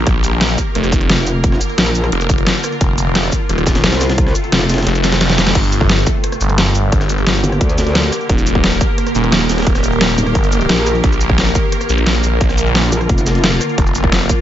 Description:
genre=dark technical drum and bass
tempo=175 BPM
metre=4/4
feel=straight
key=G minor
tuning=A4 = 439 Hz
part: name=swarming drone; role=sustained chords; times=0.0-14.4 s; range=C3 to Bb4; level=-20 LUFS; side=equal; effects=built-in reverb, sidechain pumping
part: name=phased detuned saw bass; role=bass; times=0.0-14.3 s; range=Eb1 to Bb1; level=-16 LUFS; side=equal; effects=phaser, tube saturation, sidechain pumping
part: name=breakbeat sampler-style drum kit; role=drums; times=0.1-14.4 s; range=hi-hat, snare drum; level=-25 LUFS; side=equal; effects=none
part: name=dubstep drum kit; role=drums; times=0.1-14.4 s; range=crash cymbal, hi-hat, rim click, shaker, snare drum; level=-17 LUFS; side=equal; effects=overdrive
part: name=electronic kick drum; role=drums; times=0.1-14.4 s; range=none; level=-16 LUFS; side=equal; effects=overdrive
part: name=metallic wobble bass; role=bass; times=1.1-4.9, 7.4-8.1, 10.2-13.6 s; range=Eb1 to D2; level=-16 LUFS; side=equal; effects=chorus
room=digital ambience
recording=nothing above 7.7 kHz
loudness=-12 LUFS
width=side -11 dB against mid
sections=0.0-5.6 A section; 5.6-14.4 A section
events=drop 0.0-5.6, 5.6-14.4; kick drops out 4.9-5.6; drum fill 5.0-5.6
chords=0.1 Bb; 2.8 F; 5.6 Gm; 8.3 Eb; 11.0 Bb; 13.8 F

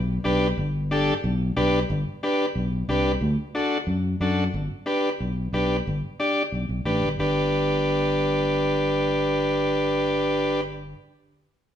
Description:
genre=latin, cumbia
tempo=181 BPM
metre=4/4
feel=straight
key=G major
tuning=A4 = 440 Hz
part: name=fingered electric bass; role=bass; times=0.0-10.9 s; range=G1 to F#2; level=-26 LUFS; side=left 1 dB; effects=none
part: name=overdriven combo organ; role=accompaniment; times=0.2-10.6 s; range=D4 to D5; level=-23 LUFS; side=equal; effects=none
room=moderate large studio reverb, RT60 1.1 s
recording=band playing live in one room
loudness=-22 LUFS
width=side -10 dB against mid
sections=0.0-1.9 A section; 1.9-7.2 B section; 7.2-9.8 C section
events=none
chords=0.0 G; 3.2 D; 4.5 G

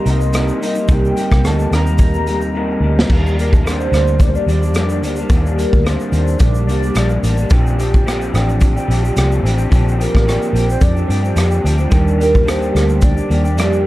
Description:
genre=indie pop, bedroom pop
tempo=109 BPM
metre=4/4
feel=swing 55% on 16ths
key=unclear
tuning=A4 = 441 Hz
part: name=soft octave-layered synth lead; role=melody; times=0.0-13.8 s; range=Bb4 to Bb5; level=-23 LUFS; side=right 1 dB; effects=phaser, lush chorus, dub echo
part: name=electric guitar through a small old amp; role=accompaniment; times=0.0-13.9 s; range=Bb2 to G4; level=-20 LUFS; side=left 1 dB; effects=analog chorus, warbly pitch drift, dub echo
part: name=mellow tine electric piano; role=accompaniment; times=0.0-3.1, 11.9-13.9 s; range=G3 to Bb4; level=-23 LUFS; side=right 3 dB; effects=dub echo
part: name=vintage muted fingered electric bass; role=bass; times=0.1-13.9 s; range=A1 to G2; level=-16 LUFS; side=equal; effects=none
part: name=raw garage drum kit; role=drums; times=0.1-13.8 s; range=crash cymbal, hi-hat, kick drum, rim click, shaker, snare drum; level=-16 LUFS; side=equal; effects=none
room=light reverb, small room ambience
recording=echo-heavy mix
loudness=-12 LUFS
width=side -17 dB against mid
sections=0.0-3.1 A section; 3.1-13.9 B section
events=drum fill 2.5-3.1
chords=0.0 Cm7; 3.1 Ebmaj7; 7.5 Bb69; 11.9 Ebmaj7

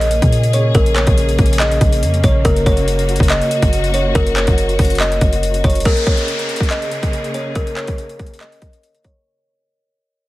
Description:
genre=hip hop, trap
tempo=141 BPM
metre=4/4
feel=half-time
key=Bb minor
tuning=A4 = 437 Hz
part: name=kalimba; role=melody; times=0.0-9.2 s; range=Bb4 to Eb5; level=-19 LUFS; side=equal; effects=low-pass filter, digital delay
part: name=warm studio string section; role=sustained chords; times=0.0-9.2 s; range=Db3 to Ab4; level=-23 LUFS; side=equal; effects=low-pass filter
part: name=warm 808-style bass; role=bass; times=0.0-5.8 s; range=Gb1 to Bb2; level=-17 LUFS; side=equal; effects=none
part: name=trap drum kit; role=drums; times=0.0-9.2 s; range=handclaps, hi-hat, kick drum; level=-17 LUFS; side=equal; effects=overdrive
part: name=downlifter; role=sound effects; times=5.9-9.3 s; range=none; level=-25 LUFS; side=left 1 dB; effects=none
room=little or no reverb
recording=dense, heavily limited modern master, vinyl crackle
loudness=-13 LUFS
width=side -17 dB against mid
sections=0.0-5.9 A section; 5.9-9.3 B section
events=fade-out 5.9-9.3; filter sweep 5.9-9.3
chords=0.0 Bbm7; 2.5 Gb; 5.9 Bbm7

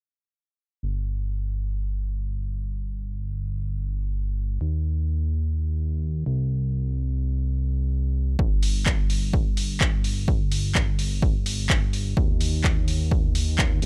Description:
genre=piano house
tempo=127 BPM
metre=4/4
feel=swing 58% on 16ths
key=unclear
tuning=A4 = 440 Hz
part: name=fat analog bass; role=bass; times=0.8-13.9 s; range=G1 to Eb2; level=-28 LUFS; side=equal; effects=sidechain pumping
part: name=electronic kick drum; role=drums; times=8.4-13.7 s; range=none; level=-25 LUFS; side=equal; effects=none
part: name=punchy analog drum machine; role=drums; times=8.6-13.9 s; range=handclaps, hi-hat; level=-30 LUFS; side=equal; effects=none
room=little or no reverb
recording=dry, gritty hardware recording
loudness=-25 LUFS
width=mono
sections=0.8-13.9 A section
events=filter sweep on analog synth bass 0.8-13.9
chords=none

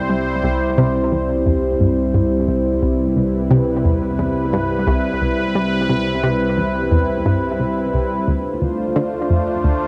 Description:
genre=ambient, sequencer-driven space music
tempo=88 BPM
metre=4/4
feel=straight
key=unclear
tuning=A4 = 439 Hz
part: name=sweeping resonant pad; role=sustained chords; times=0.0-9.9 s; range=G3 to C5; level=-21 LUFS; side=equal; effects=chorus
part: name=analog drone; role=bass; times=0.0-9.9 s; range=C2 to D2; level=-30 LUFS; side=equal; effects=chorus
part: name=analog pluck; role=riff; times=0.1-9.8 s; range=C2 to G3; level=-22 LUFS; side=equal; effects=chorus, analog delay
room=moderate plate reverb, RT60 2.4 s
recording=none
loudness=-18 LUFS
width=mono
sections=0.0-9.9 A section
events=none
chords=0.0 C; 8.3 Dm7

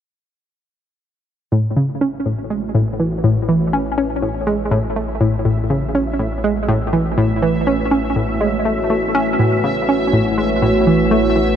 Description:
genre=ambient, sequencer-driven space music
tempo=122 BPM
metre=4/4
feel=straight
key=A major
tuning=A4 = 440 Hz
part: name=sweeping resonant pad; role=sustained chords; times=1.5-11.6 s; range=A3 to C#5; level=-21 LUFS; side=equal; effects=chorus
part: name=analog pluck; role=riff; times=1.5-11.6 s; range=A2 to C#4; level=-17 LUFS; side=equal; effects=chorus, tape echo
part: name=warm sub bass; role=bass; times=1.5-11.6 s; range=A1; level=-28 LUFS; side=equal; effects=none
part: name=bubbling stepped-filter texture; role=texture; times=2.4-11.6 s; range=E5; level=-28 LUFS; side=right 1 dB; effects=chorus, built-in reverb
room=moderate huge ambient reverb, RT60 8.8 s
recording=cassette tape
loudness=-15 LUFS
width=side -9 dB against mid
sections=1.5-11.6 A section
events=fade-in on analog synth pad 1.5-11.6; fade-in on sub bass 1.5-11.6; fade-in on synth texture 1.5-11.6; filter sweep on synth arpeggio sound 1.5-11.6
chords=1.5 A6

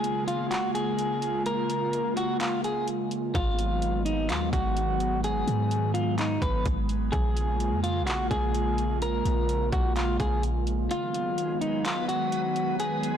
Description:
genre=hip hop, atmospheric cloud-rap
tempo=127 BPM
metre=4/4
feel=half-time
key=unclear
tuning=A4 = 443 Hz
part: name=clean electric guitar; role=melody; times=0.0-13.2 s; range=D#4 to B4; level=-29 LUFS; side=left 1 dB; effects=low-pass filter, ping-pong delay
part: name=airy breathy pad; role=sustained chords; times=0.0-13.2 s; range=C#3 to E#4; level=-30 LUFS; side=right 1 dB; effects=chorus, sidechain pumping
part: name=trap drum kit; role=drums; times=0.0-13.1 s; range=handclaps, hi-hat, kick drum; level=-33 LUFS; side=equal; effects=none
part: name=clean 808-style bass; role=bass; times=3.3-10.9 s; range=G#1 to G#2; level=-28 LUFS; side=equal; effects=none
part: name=backwards swelling texture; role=texture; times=11.3-13.2 s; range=F#3 to B4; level=-39 LUFS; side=equal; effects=built-in reverb
room=light reverb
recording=blown-out, overdriven recording, overdrive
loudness=-25 LUFS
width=side -9 dB against mid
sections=0.0-13.2 A section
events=break 0.0-3.3; kick muted 10.9-13.2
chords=0.0 A#m7; 3.3 G#m7; 7.1 A#m7; 10.9 G#m7

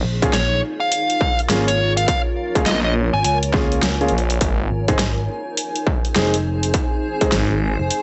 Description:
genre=glitch hop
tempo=103 BPM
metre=4/4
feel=swing 62% on 16ths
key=Bb minor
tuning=A4 = 443 Hz
part: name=fingered electric bass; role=bass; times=0.0-7.9 s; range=F1 to Db2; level=-25 LUFS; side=equal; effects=none
part: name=phased detuned saw bass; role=bass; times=0.0-7.8 s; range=Ab1 to Bb1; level=-22 LUFS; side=equal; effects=phaser
part: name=granular cloud pad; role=texture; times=0.0-8.0 s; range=Eb4 to Ab5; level=-28 LUFS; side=equal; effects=built-in reverb, sidechain pumping
part: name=warm grand piano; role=stabs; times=0.2-7.3 s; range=Ab3 to Ab4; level=-26 LUFS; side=equal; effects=sidechain pumping, tape echo
part: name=dubstep drum kit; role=drums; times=0.2-8.0 s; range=hi-hat, snare drum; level=-25 LUFS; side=equal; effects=studio reverb
part: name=electronic kick drum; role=drums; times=0.2-7.3 s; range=none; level=-23 LUFS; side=equal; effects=distortion, studio reverb
part: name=dark smooth lead guitar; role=melody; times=0.3-3.4 s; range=Db5 to Ab5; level=-23 LUFS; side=equal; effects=overdrive, tape echo
room=light reverb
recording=dry, gritty hardware recording, transformer saturation, nothing above 8.0 kHz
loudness=-19 LUFS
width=mono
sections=0.0-8.0 A section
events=none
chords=0.0 Bbm7; 4.4 Ab

